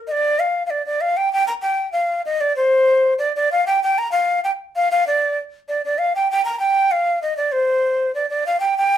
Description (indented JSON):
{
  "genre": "andean folk",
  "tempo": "97 BPM",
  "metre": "2/4",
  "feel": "straight",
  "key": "G minor",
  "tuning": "A4 = 439 Hz",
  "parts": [
    { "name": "breathy large quena", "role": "solo", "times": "0.1-9.0 s", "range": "C5 to Bb5", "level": "-17 LUFS", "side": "equal", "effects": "none" }
  ],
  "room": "wet studio ambience, RT60 0.5 s",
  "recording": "band playing live in one room",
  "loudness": "-17 LUFS",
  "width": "side -10 dB against mid",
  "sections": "0.0-1.3 A section; 1.3-9.0 B section",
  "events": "none",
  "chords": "none"
}